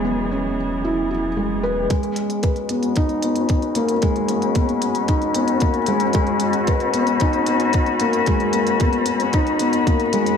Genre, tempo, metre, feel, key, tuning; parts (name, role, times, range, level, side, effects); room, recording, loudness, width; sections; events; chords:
piano and strings electronica; 113 BPM; 4/4; straight; G# minor; A4 = 435 Hz
muted string quartet; sustained chords; 0.0-10.4 s; E3 to B5; -23 LUFS; left 4 dB; sidechain pumping, low-pass filter
felt-muted upright piano; riff; 0.0-10.4 s; G#3 to C#5; -20 LUFS; left 1 dB; tape echo
warm sub bass; bass; 0.0-1.9 s; E1; -30 LUFS; equal; sidechain pumping
electronic hi-hat; drums; 1.9-10.4 s; -31 LUFS; right 1 dB; high-pass filter on hats, studio reverb
electronic kick drum; drums; 1.9-10.0 s; -20 LUFS; equal; studio reverb
moderate echo chamber reverb, RT60 1.5 s; -17 LUFS; side -7 dB against mid
0.0-1.9 A section; 1.9-10.4 B section
build-up 1.9-10.4; filter sweep on string quartet 1.9-10.4
0.0 E6; 1.9 G#madd9